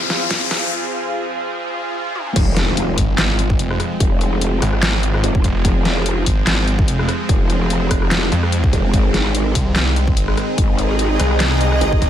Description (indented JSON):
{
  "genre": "heavy wobble dubstep",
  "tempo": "146 BPM",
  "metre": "4/4",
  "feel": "swing 55% on 16ths, half-time",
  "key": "F minor",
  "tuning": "A4 = 435 Hz",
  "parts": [
    { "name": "supersaw pad", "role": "sustained chords", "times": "0.0-12.1 s", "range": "F2 to Ab4", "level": "-24 LUFS", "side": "right 1 dB", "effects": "vintage 12-bit sampler grit, sidechain pumping" },
    { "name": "riser, swell and impact", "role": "sound effects", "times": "0.0-4.0 s", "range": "none", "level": "-24 LUFS", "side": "left 1 dB", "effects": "none" },
    { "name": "granular cloud pad", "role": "texture", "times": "0.0-0.7, 10.3-12.1 s", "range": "F4 to Bb5", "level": "-25 LUFS", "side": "equal", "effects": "built-in reverb, sidechain pumping" },
    { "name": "dubstep drum kit", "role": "drums", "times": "0.1-12.1 s", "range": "crash cymbal, handclaps, hi-hat, rim click, snare drum, toms", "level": "-21 LUFS", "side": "left 1 dB", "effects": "none" },
    { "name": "electronic kick drum", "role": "drums", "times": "0.3-12.1 s", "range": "none", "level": "-18 LUFS", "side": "equal", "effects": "none" },
    { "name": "growl bass", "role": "bass", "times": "2.4-12.0 s", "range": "F1 to Ab1", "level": "-19 LUFS", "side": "equal", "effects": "chorus, overdrive" },
    { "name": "snarling distorted saw bass", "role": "bass", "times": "3.0-12.1 s", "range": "F1 to F2", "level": "-18 LUFS", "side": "equal", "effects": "distortion, overdrive" }
  ],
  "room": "light reverb, digital ambience",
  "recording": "high-pass filter",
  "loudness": "-15 LUFS",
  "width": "side -10 dB against mid",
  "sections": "0.0-2.4 A section; 2.4-12.1 B section",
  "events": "build-up 0.0-2.4; drum fill 0.0-0.7, 2.2; riser 0.0-0.7; filter sweep on supersaw synth 0.0-2.4; filter sweep 0.0-2.4; break 0.7-2.4; swell 1.7-2.4; drop 2.4-12.1; impact 2.4-4.0",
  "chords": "0.0 Fm; 8.9 Ab"
}